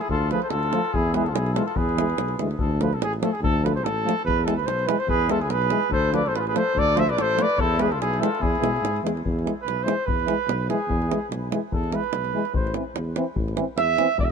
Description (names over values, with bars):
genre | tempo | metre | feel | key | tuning
balkan folk, Balkan brass band | 145 BPM | 2/4 | swing 55% on 16ths | E phrygian dominant | A4 = 440 Hz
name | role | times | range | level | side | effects
mellow trumpet | melody | 0.0-14.3 s | G#4 to E5 | -25 LUFS | right 2 dB | none
clear flugelhorn | second line | 0.0-2.4, 5.1-9.0 s | E4 to C5 | -31 LUFS | left 8 dB | none
davul | percussion | 0.0-14.3 s | none | -29 LUFS | equal | none
mellow tuba | bass | 0.1-14.3 s | E1 to B2 | -27 LUFS | equal | none
clear euphonium | accompaniment | 0.3-14.1 s | E3 to F3 | -32 LUFS | right 6 dB | none
mellow French horn | accompaniment | 0.3-14.1 s | G#3 to C4 | -31 LUFS | left 7 dB | none
room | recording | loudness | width
light reverb | minimal, uncompressed stereo recording | -21 LUFS | side -6 dB against mid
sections
0.0-2.6 A section; 2.6-9.2 A section; 9.2-14.3 B section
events
trumpet solo 9.2-14.3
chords
0.0 Dm; 0.9 E; 2.6 Dm; 4.3 E; 5.9 Dm; 7.6 E; 12.5 Am